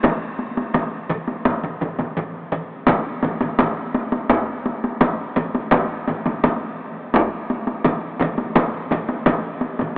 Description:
japanese traditional, taiko drum ensemble; 84 BPM; 4/4; straight
solo taiko drums; percussion; 0.0-10.0 s; -21 LUFS; equal
taiko ensemble; percussion; 0.0-10.0 s; -33 LUFS; equal
taiko ensemble; percussion; 0.0-10.0 s; -27 LUFS; right 1 dB
taiko ensemble; percussion; 0.0-8.7 s; -25 LUFS; equal
moderate huge ambient reverb, RT60 7.6 s; in a vast, echoing space, telephone sound; -19 LUFS; side -27 dB against mid
0.0-2.9 A section; 2.9-10.0 B section

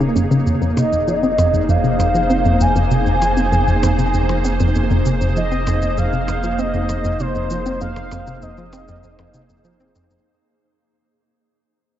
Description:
ambient, sequencer-driven space music; 98 BPM; 4/4; straight; A4 = 440 Hz
evolving wavetable pad; sustained chords; 0.0-10.3 s; Bb3 to Db5; -23 LUFS; right 1 dB; ensemble chorus, built-in reverb
hollow square pluck; riff; 0.0-10.2 s; F2 to C4; -19 LUFS; equal; chorus, cassette tape, tape echo
warm sub bass; bass; 0.0-10.2 s; Eb1 to F1; -24 LUFS; equal
shaker and percussion blips; percussion; 0.0-10.2 s; -36 LUFS; left 2 dB; tape echo
expressive synth lead; melody; 0.8-10.0 s; C5 to Ab5; -22 LUFS; equal; analog chorus, tape echo
wet huge ambient reverb, RT60 7.6 s; dark, warm production, nothing above 7.8 kHz; -15 LUFS; side -11 dB against mid
0.0-10.3 A section
fade-in on drum 0.0-10.3; filter sweep on synth arpeggio sound 0.0-10.3; fade-out 3.7-10.3
0.5 Fm7

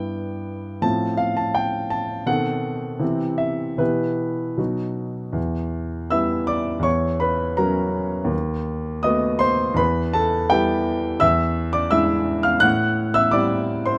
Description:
classical, romantic character piece for solo piano; 74-86 BPM; 2/4; rubato; E minor; A4 = 440 Hz
warm grand piano; solo; 0.0-14.0 s; D#2 to F#6; -22 LUFS; equal
light reverb; -22 LUFS; mono
0.0-5.4 A section; 5.4-14.0 B section
0.0 Em/G; 0.8 F/A; 2.3 B7b9; 3.0 C; 3.8 Em/B; 4.6 B; 5.4 Em; 6.9 F#7/E; 8.3 B7/D#; 9.8 Em; 11.2 E7; 12.6 Am7

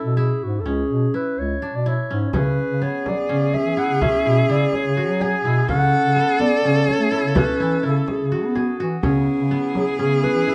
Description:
contemporary instrumental, chamber music in an uneven meter; 251 BPM (eighths); 7/8; straight; C# phrygian; A4 = 440 Hz
mellow clarinet; melody; 0.0-10.5 s; F#4 to G#5; -26 LUFS; equal
kora; arpeggios; 0.0-10.5 s; B3 to G#4; -27 LUFS; equal
mellow bass clarinet; bass; 0.0-10.4 s; C#2 to B3; -24 LUFS; equal
bright viola; second line; 2.3-10.5 s; G#4 to A4; -26 LUFS; equal
frame drum; percussion; 2.3-10.5 s; -28 LUFS; equal
clear chamber string section; sustained chords; 9.0-10.5 s; C#3 to E4; -33 LUFS; equal
moderate studio reverb, RT60 0.5 s; dark, warm production; -20 LUFS; mono
0.0-2.3 A section; 2.3-10.5 B section
0.0 C#m; 2.3 C#m7; 5.7 F#m/C#; 9.0 C#m7

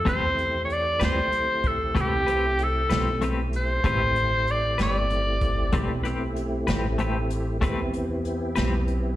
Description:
slow blues; 64 BPM (dotted quarters); 12/8; straight; A minor; A4 = 440 Hz
clear tenor saxophone; melody; 0.0-6.0 s; G4 to D5; -24 LUFS; equal; slapback echo
tonewheel organ; sustained chords; 0.0-9.2 s; A3 to G4; -31 LUFS; equal; slow rotary speaker, chorus vibrato
upright bass; bass; 0.0-9.2 s; G1 to E2; -28 LUFS; equal
semi-hollow electric guitar; accompaniment; 0.1-8.8 s; A3 to B4; -29 LUFS; left 4 dB; tremolo, slapback echo
jazz brush drum kit; drums; 0.1-9.0 s; hi-hat, kick drum, snare drum; -29 LUFS; equal
light reverb; live gig heard through the venue's PA, recital hall reverb; -22 LUFS; side -14 dB against mid
0.0-9.2 A section
0.1 Am9

